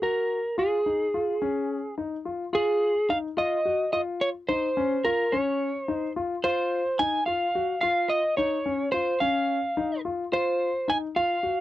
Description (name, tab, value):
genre	progressive instrumental, progressive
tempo	216 BPM (eighths)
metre	7/8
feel	straight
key	unclear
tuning	A4 = 440 Hz
part	lightly driven lead guitar	melody	0.0-11.6 s	Ab4 to Ab5	-25 LUFS	right 1 dB	none
part	warm concert grand piano	arpeggios	0.0-11.6 s	Db4 to Gb4	-29 LUFS	left 4 dB	none
room	light reverb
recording	dry, close 1970s-style studio recording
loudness	-24 LUFS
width	side -14 dB against mid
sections	0.0-2.5 A section; 2.5-11.6 B section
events	none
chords	0.0 N.C.; 0.6 Db; 2.5 Fm7; 4.5 Dbmaj9; 6.4 F5; 8.4 Dbadd9; 10.3 F5